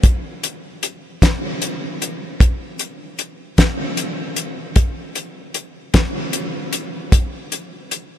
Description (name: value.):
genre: rock.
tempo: 51 BPM (dotted quarters).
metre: 6/8.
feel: straight.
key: none.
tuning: none.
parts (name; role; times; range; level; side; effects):
damped 70s drum kit; drums; 0.0-8.1 s; hi-hat, kick drum, snare drum; -17 LUFS; equal; none.
room: moderate huge ambient reverb, RT60 5.6 s.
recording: lossy compression artefacts.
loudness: -19 LUFS.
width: side -11 dB against mid.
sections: 0.0-8.2 A section.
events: none.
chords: none.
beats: | 0.04 1.22 | 2.40 3.58 | 4.76 5.95 | 7.13.